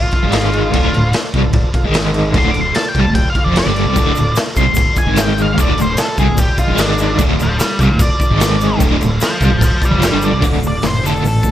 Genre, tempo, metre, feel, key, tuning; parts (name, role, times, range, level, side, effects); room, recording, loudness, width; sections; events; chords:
garage rock duo or trio; 149 BPM; 4/4; straight; D minor; A4 = 440 Hz
octave-fuzz lead guitar; melody; 0.0-11.5 s; D4 to D6; -19 LUFS; equal; distortion
combo organ; sustained chords; 0.0-11.5 s; D#4 to F5; -27 LUFS; equal; wide subtle chorus
fuzz fingered electric bass; bass; 0.0-11.5 s; D1 to C2; -21 LUFS; equal; overdrive
crunchy overdriven guitar; riff; 0.1-11.5 s; D2 to G#3; -16 LUFS; equal; tremolo
raw garage drum kit; drums; 0.1-11.5 s; crash cymbal, hi-hat, kick drum, snare drum; -16 LUFS; equal
egg shaker; percussion; 4.0-11.5 s; -30 LUFS; left 7 dB
light reverb, studio reverb; -12 LUFS; side -12 dB against mid
0.0-10.4 A section; 10.4-11.5 B section
lead electric guitar solo 0.0-10.4
0.2 G#5; 0.7 Dm; 1.9 G#5; 2.4 Dm; 5.1 G#5; 5.6 Dm; 6.7 G#5; 7.2 Dm; 8.3 G#5; 8.8 Dm